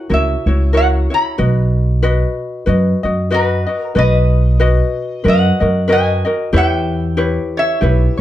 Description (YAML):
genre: Hawaiian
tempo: 93 BPM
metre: 4/4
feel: swing 57% on 8ths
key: B major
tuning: A4 = 440 Hz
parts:
  - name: lap resonator guitar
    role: melody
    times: 0.0-8.2 s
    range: F#4 to B5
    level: -19 LUFS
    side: equal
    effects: plate reverb
  - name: ukulele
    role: accompaniment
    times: 0.0-8.2 s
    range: E4 to D#5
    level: -18 LUFS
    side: left 2 dB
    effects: none
  - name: upright bass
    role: bass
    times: 0.1-8.2 s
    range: B1 to F#2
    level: -14 LUFS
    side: right 1 dB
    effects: none
room: moderate studio reverb, RT60 0.7 s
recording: dark, warm production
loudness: -13 LUFS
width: side -13 dB against mid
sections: 0.0-4.0 A section; 4.0-8.2 A section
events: none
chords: 0.0 F#7; 1.4 B; 4.0 Bmaj7; 6.5 Em6